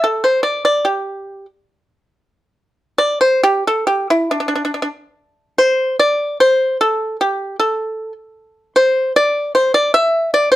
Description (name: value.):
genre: chinese traditional, Chinese solo plucked strings.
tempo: 68-77 BPM.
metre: 2/4.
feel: rubato.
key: D shang mode.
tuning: A4 = 440 Hz.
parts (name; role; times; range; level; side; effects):
pipa; solo; 0.0-10.6 s; D4 to E5; -14 LUFS; equal; none.
room: light reverb.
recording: none.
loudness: -14 LUFS.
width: side -14 dB against mid.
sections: 0.0-5.1 A section; 5.1-10.6 B section.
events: none.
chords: none.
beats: | 0.07 0.90 | 1.72 2.57 | 3.42 4.29 | 5.14 5.96 | 6.78 7.56 | 8.34 9.12 | 9.91.